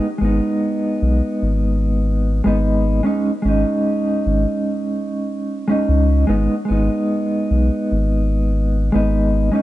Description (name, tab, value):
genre	trip hop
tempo	74 BPM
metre	4/4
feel	swing 54% on 16ths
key	G# minor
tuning	A4 = 440 Hz
part	mellow electric guitar	accompaniment	0.0-9.6 s	G#3 to D#4	-18 LUFS	right 1 dB	tremolo, tape echo
part	round analog bass	bass	0.2-9.5 s	G#1 to C#2	-17 LUFS	equal	none
room	light reverb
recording	dark, warm production, nothing above 10.8 kHz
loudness	-16 LUFS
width	side -15 dB against mid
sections	0.0-9.6 A section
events	none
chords	0.0 G#m; 3.0 D#7sus4/G#; 6.3 G#m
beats	0.61 1.42 2.23 | 3.04 3.86 4.67 5.48 | 6.29 7.10 7.91 8.72 | 9.53